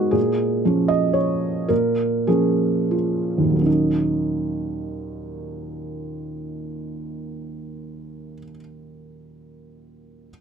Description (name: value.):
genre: neoclassical minimalist piano.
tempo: 80-128 BPM.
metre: 3/4.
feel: rubato.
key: Eb minor.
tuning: A4 = 439 Hz.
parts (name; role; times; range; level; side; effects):
felt-muted upright piano; solo; 0.0-10.3 s; Eb2 to Eb5; -21 LUFS; right 2 dB; none.
room: light reverb.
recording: none.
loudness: -18 LUFS.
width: side -7 dB against mid.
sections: 0.0-3.7 A section; 3.7-8.1 B section.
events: slowing down 0.0-3.7.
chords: 0.2 Bbm7; 3.7 Ebm7.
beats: | 0.16 0.64 1.16 | 1.70 2.28 2.93 | 3.66 4.38 5.12 | 5.87 6.62 7.35.